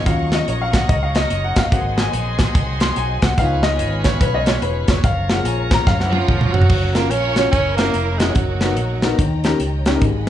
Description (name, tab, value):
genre	uptempo gospel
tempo	145 BPM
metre	4/4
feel	swing 62% on 8ths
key	F# major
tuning	A4 = 440 Hz
part	warm upright piano	accompaniment	0.0-10.3 s	G#2 to B#5	-22 LUFS	left 3 dB	none
part	bright tonewheel organ	sustained chords	0.0-6.7 s	E#3 to B4	-28 LUFS	right 2 dB	fast rotary speaker, overdrive
part	warm studio string section	sustained chords	0.0-10.3 s	A#4 to C#6	-31 LUFS	left 2 dB	none
part	fingered electric bass	bass	0.0-10.3 s	E1 to F#2	-22 LUFS	equal	none
part	tight funk drum kit	drums	0.1-10.3 s	crash cymbal, hi-hat, kick drum, snare drum, toms	-18 LUFS	equal	none
part	warm tenor saxophone	melody	6.0-9.2 s	E3 to C#4	-23 LUFS	right 4 dB	none
part	warm studio string section	melody	6.1-9.2 s	A#3 to C#5	-24 LUFS	right 3 dB	none
room	moderate large studio reverb, RT60 0.8 s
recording	band playing live in one room, nothing above 10.4 kHz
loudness	-15 LUFS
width	side -11 dB against mid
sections	0.0-6.7 A section; 6.7-10.3 B section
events	upright piano solo 0.0-6.7; drum fill 5.9-6.7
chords	0.1 D#m7; 1.7 G#7; 3.4 C#7; 5.0 F#maj7; 7.5 F#7; 8.4 Bmaj7/F#; 9.2 D#7